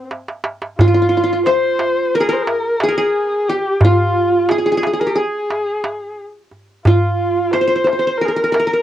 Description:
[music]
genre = Turkish makam ensemble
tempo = 178 BPM (eighths)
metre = 9/8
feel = straight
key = F makam nihavent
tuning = A4 = 439 Hz
[part]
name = qanun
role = melody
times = 0.0-8.8 s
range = F4 to C5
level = -17 LUFS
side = right 1 dB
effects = cassette tape
[part]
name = warm kamancheh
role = second line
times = 0.0-8.8 s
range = F4 to C5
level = -19 LUFS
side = left 1 dB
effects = none
[part]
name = darbuka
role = percussion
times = 0.1-8.7 s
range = none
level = -17 LUFS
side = right 1 dB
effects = none
[sound]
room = light reverb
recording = home recording on cassette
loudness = -14 LUFS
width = side -12 dB against mid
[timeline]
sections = 0.8-8.8 A section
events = drum fill 0.1-0.8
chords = none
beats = 0.11 0.45 | 0.79 1.12 1.46 1.80 2.13 2.47 2.81 3.14 3.48 | 3.82 4.15 4.49 4.83 5.16 5.50 5.83 6.17 6.51 | 6.84 7.18 7.52 7.85 8.19 8.53

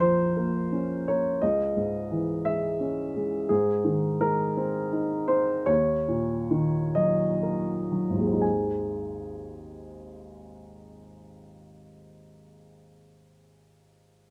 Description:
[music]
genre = neoclassical minimalist piano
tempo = 38-59 BPM (dotted quarters)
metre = 6/8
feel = rubato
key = Ab mixolydian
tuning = A4 = 438 Hz
[part]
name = warm upright piano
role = solo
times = 0.0-14.3 s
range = Ab1 to Ab5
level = -27 LUFS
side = equal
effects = none
[sound]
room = light reverb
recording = none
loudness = -26 LUFS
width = mono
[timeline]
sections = 0.0-8.4 A section; 8.4-14.3 B section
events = slowing down 2.4-8.4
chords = 0.0 Bbm; 1.4 Dbmadd9; 3.5 Ab; 5.7 Ebm; 8.4 Ab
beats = 0.37 | 1.42 2.44 | 3.50 4.56 | 5.69 6.96 | 8.43 9.92 | 11.39 12.84

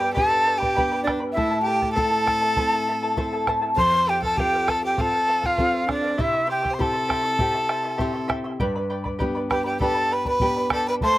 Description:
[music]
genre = andean folk, Andean ensemble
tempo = 100 BPM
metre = 4/4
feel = straight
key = unclear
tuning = A4 = 438 Hz
[part]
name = breathy mellow quena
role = melody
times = 0.0-11.2 s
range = D5 to C6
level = -22 LUFS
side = equal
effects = none
[part]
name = clear violin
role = second line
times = 0.0-11.2 s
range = D4 to C5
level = -28 LUFS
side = right 2 dB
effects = none
[part]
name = charango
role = accompaniment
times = 0.0-11.2 s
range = E4 to C6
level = -28 LUFS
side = right 1 dB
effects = slapback echo
[part]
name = nylon-string guitar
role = accompaniment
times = 0.0-11.2 s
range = F2 to A4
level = -29 LUFS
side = left 2 dB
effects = none
[part]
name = bombo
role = percussion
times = 0.2-11.2 s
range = none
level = -28 LUFS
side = right 1 dB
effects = none
[sound]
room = little or no reverb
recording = recorded outdoors, with no room sound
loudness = -20 LUFS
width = side -16 dB against mid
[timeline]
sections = 0.0-11.2 A section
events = none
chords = 0.0 G; 1.4 Am; 3.8 F; 6.2 C; 8.6 G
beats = 0.17 0.78 | 1.38 1.98 2.58 3.18 | 3.78 4.39 4.99 5.59 | 6.19 6.80 7.40 8.00 | 8.60 9.21 9.81 10.41 | 11.02

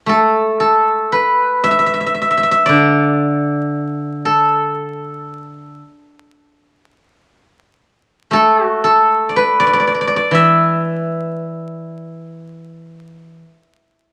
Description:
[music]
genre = chinese traditional, Chinese solo plucked strings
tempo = 58 BPM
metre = 4/4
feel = rubato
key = unclear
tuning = A4 = 440 Hz
[part]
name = steel-string zither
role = solo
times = 0.1-14.1 s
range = D3 to E5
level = -15 LUFS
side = equal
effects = none
[sound]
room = moderate studio ambience, RT60 0.5 s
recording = vinyl crackle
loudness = -15 LUFS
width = mono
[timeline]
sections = 0.1-14.1 A section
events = none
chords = none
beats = | 0.08 1.12 2.17 3.23 | 4.27 5.29 6.30 7.30 | 8.33 9.34 10.34 11.36 | 12.38 13.41

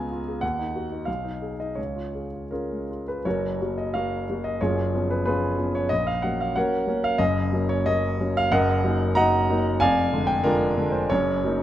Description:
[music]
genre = classical, romantic character piece for solo piano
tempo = 80-95 BPM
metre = 2/4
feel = rubato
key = F# major, Eb minor from 8.5 s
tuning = A4 = 443 Hz
[part]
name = warm concert grand piano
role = solo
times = 0.0-11.6 s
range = F1 to A#5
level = -22 LUFS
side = equal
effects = none
[sound]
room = light reverb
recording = close, detailed microphones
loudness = -22 LUFS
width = side -12 dB against mid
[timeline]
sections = 0.0-3.2 A section; 3.2-11.6 B section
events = none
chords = 0.4 D#m; 1.1 G#m/B; 1.8 C#; 3.2 F#; 4.6 C#7/F#; 5.9 F#/A#; 7.2 F#; 8.5 Ebm/Gb; 9.8 Ddim/F; 11.1 Ebm/Gb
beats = | 0.42 1.07 | 1.77 2.52 | 3.25 3.92 | 4.59 5.25 | 5.90 6.55 | 7.19 7.86 | 8.51 9.15 | 9.79 10.44 | 11.10

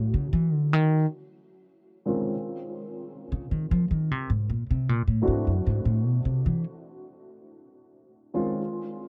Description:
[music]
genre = jazz ballad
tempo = 76 BPM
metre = 4/4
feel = swing 66% on 8ths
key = unclear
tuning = A4 = 441 Hz
[part]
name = upright bass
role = bass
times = 0.0-6.6 s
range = Gb2 to F3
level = -26 LUFS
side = equal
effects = none
[part]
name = dark baby grand piano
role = accompaniment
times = 2.1-8.6 s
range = Eb3 to Gb4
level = -34 LUFS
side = equal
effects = subtle chorus
[sound]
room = moderate huge ambient reverb, RT60 6.1 s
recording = dreamy mix soaked in reverb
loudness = -26 LUFS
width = mono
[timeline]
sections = 0.0-9.1 A section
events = upright bass solo 0.0-9.1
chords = 0.0 Dbm; 0.7 Eb13sus4; 2.3 Dbmaj7sus2; 5.5 Gbm13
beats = 0.73 1.53 | 2.33 3.12 3.90 4.69 | 5.47 6.25 7.04 7.82 | 8.59

